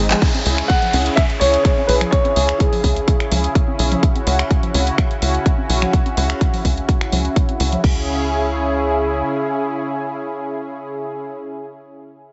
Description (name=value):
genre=progressive house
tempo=126 BPM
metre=4/4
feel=straight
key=C# minor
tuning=A4 = 441 Hz
part: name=lush unison pad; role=sustained chords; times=0.0-11.3 s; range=C#3 to G#4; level=-24 LUFS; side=equal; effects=chorus, sidechain pumping
part: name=tight sequencer bass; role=bass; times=0.0-9.2 s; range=G#1 to C#2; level=-22 LUFS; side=equal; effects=sidechain pumping
part: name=pop drum kit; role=drums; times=0.1-7.9 s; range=crash cymbal, finger snaps, handclaps, hi-hat, shaker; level=-27 LUFS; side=equal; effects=sidechain pumping on hats, studio ambience, sidechain pumping on perc, sidechain pumping on cymbals
part: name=congas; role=percussion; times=0.1-7.8 s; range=none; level=-30 LUFS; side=equal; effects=sidechain pumping on perc, studio ambience
part: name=electronic kick drum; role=drums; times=0.2-7.9 s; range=none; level=-19 LUFS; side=equal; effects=studio ambience
part: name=downlifter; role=sound effects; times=0.2-4.0 s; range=none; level=-31 LUFS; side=equal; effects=none
part: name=dark baby grand piano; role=melody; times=0.7-3.5 s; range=G#4 to F#5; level=-21 LUFS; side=equal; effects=vintage 12-bit sampler grit, sidechain pumping, tape echo
room=light reverb, digital ambience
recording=nothing above 7.9 kHz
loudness=-18 LUFS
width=mono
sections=0.2-7.8 A section; 7.8-11.6 B section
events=drum fill 0.0; band accent 0.1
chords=0.2 C#m